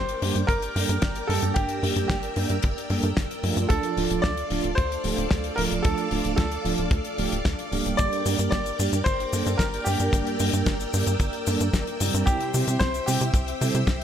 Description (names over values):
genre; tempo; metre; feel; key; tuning
italo disco; 112 BPM; 4/4; straight; G dorian; A4 = 440 Hz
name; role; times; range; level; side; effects
bright baby grand piano; melody; 0.0-14.0 s; G4 to D5; -30 LUFS; equal; ping-pong delay
string machine, full ensemble; sustained chords; 0.0-14.0 s; A4 to E6; -31 LUFS; equal; ensemble chorus
tight sequencer bass; bass; 0.0-14.0 s; D1 to C3; -28 LUFS; equal; none
damped 70s drum kit; drums; 0.1-14.0 s; cabasa, hi-hat, snare drum; -30 LUFS; left 3 dB; studio reverb
mellow synth brass; stabs; 0.2-13.8 s; G2 to A4; -29 LUFS; right 4 dB; chorus
kick drum; drums; 0.5-14.0 s; none; -24 LUFS; equal; studio reverb
room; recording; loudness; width
light reverb, small room ambience; none; -22 LUFS; side -9 dB against mid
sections
0.0-14.0 A section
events
none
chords
0.0 Gm; 3.7 Dm; 8.0 Gm; 12.3 C